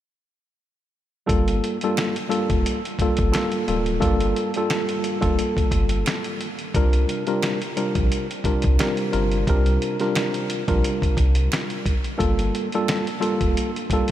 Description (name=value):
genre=hip hop, boom-bap hip-hop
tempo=88 BPM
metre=4/4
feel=swing 55% on 16ths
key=G minor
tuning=A4 = 441 Hz
part: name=tine electric piano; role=accompaniment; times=1.3-14.1 s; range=G2 to Bb4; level=-23 LUFS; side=equal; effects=medium stereo tremolo, high-pass filter, low-pass filter
part: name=warm sub bass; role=bass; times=1.3-13.6 s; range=D1 to C2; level=-22 LUFS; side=equal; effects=none
part: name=dusty soul sampler-style drum kit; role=drums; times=1.3-14.1 s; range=hi-hat, kick drum, snare drum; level=-24 LUFS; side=equal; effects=none
part: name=finger snap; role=percussion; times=2.0-13.1 s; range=none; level=-40 LUFS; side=right 11 dB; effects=none
room=light reverb, digital ambience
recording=none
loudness=-20 LUFS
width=side -12 dB against mid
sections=1.3-14.1 A section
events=none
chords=1.3 Gm9; 6.7 C7sus4; 12.2 Gm9